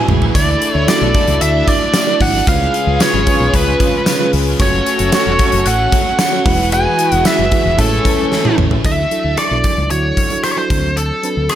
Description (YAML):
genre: 1980s-style pop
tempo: 113 BPM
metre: 4/4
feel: straight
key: unclear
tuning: A4 = 440 Hz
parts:
  - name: biting lead guitar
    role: melody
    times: 0.0-11.6 s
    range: G#4 to G#5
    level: -17 LUFS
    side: equal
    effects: overdrive
  - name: synth chime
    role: second line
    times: 0.0-8.5 s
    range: A5 to G#6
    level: -28 LUFS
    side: right 1 dB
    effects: ensemble chorus, tremolo, digital delay
  - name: FM electric piano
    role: accompaniment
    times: 0.0-11.6 s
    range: F#3 to E5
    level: -21 LUFS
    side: right 5 dB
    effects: chorus
  - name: heavy high-gain guitar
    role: accompaniment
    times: 0.0-9.4 s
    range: E2 to E4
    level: -26 LUFS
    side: right 1 dB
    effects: distortion, lush chorus
  - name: sweeping resonant pad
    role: sustained chords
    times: 0.0-8.8 s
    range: C#3 to B4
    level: -23 LUFS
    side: left 1 dB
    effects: chorus
  - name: warm horn section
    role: stabs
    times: 0.0-8.6 s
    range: C#4 to C#5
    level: -24 LUFS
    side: left 8 dB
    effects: none
  - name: fingered electric bass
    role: bass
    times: 0.1-11.5 s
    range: E1 to D2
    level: -18 LUFS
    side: equal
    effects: none
  - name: gated 80s drum kit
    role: drums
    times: 0.1-11.6 s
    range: hi-hat, kick drum, rim click, snare drum, tambourine, toms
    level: -16 LUFS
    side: equal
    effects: none
room: light reverb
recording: faint mains hum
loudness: -12 LUFS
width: side -11 dB against mid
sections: 0.0-8.8 A section; 8.8-11.6 B section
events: drum fill 0.0-0.4, 8.3-8.8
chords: 0.4 Dsus2; 2.5 C#7; 4.6 F#m; 6.5 Eadd9; 7.8 Amaj7; 8.8 Dadd9; 10.7 D7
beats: | 0.35 0.88 1.41 1.94 | 2.47 3.00 3.54 4.07 | 4.60 5.13 5.66 6.19 | 6.72 7.25 7.78 8.31 | 8.85 9.38 9.91 10.44 | 10.97 11.50